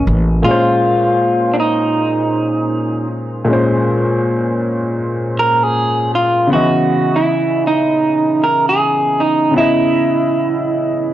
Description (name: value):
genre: lo-fi hip hop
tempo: 79 BPM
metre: 4/4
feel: swing 65% on 16ths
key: Bb minor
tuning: A4 = 442 Hz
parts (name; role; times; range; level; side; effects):
- electric guitar through a small old amp; melody; 0.0-11.1 s; D4 to Bb4; -14 LUFS; right 1 dB; spring reverb
- clear upright piano; accompaniment; 0.0-11.1 s; Bb2 to Eb5; -17 LUFS; left 1 dB; cassette tape
room: moderate studio reverb, RT60 0.5 s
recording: worn, warbling old tape, cassette tape, warbly pitch drift, nothing above 10.5 kHz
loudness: -13 LUFS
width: side -12 dB against mid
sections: 0.4-11.1 A section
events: none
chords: 0.4 Bbm9; 6.5 Dbm9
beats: | 0.44 1.20 1.96 2.72 | 3.48 4.24 5.00 5.76 | 6.52 7.28 8.04 8.80 | 9.56 10.32 11.08